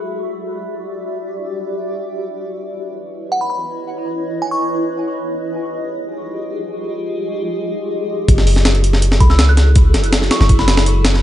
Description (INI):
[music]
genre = drum and bass, jungle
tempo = 163 BPM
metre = 4/4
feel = straight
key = unclear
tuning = A4 = 440 Hz
[part]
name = granular cloud pad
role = sustained chords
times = 0.0-11.2 s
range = E4 to E5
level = -22 LUFS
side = left 1 dB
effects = built-in reverb
[part]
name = glassy synth bell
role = melody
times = 3.3-4.8, 9.2-11.0 s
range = F#5 to F#6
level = -24 LUFS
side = right 1 dB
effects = chorus, dub echo
[part]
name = long sustained 808-style bass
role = bass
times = 8.3-11.2 s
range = F#1 to C#2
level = -13 LUFS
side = equal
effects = tube saturation
[part]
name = breakbeat sampler-style drum kit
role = drums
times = 8.3-11.2 s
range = hi-hat, kick drum, snare drum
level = -14 LUFS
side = equal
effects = studio reverb
[sound]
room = little or no reverb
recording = nothing above 10.8 kHz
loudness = -15 LUFS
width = side -12 dB against mid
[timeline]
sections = 0.0-8.3 A section; 8.3-11.2 B section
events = filter sweep on ambient pad 0.0-8.3; drop 8.3-11.2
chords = 0.0 Em9; 2.4 C#m9; 5.3 Fm9; 8.3 F#m9